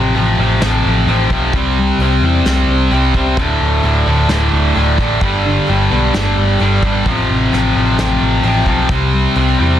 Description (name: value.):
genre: quiet-loud alternative rock.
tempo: 130 BPM.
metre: 4/4.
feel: straight.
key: unclear.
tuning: A4 = 440 Hz.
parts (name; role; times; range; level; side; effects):
twelve-string electric guitar; arpeggios; 0.0-9.8 s; D2 to G4; -18 LUFS; left 3 dB; analog chorus, slapback echo.
high-gain distorted guitar; riff; 0.0-9.8 s; D2 to C4; -15 LUFS; right 1 dB; distortion.
overdriven picked electric bass; bass; 0.0-9.8 s; D1 to E2; -16 LUFS; equal; none.
vintage brush drum kit; drums; 0.2-9.5 s; hi-hat, kick drum, snare drum; -21 LUFS; equal; none.
room: small room ambience.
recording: dense, heavily limited modern master.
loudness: -11 LUFS.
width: side -11 dB against mid.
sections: 0.0-9.8 A section.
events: none.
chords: 0.0 F/A; 1.5 C; 3.4 D5; 5.2 G; 7.1 F/A; 8.9 C.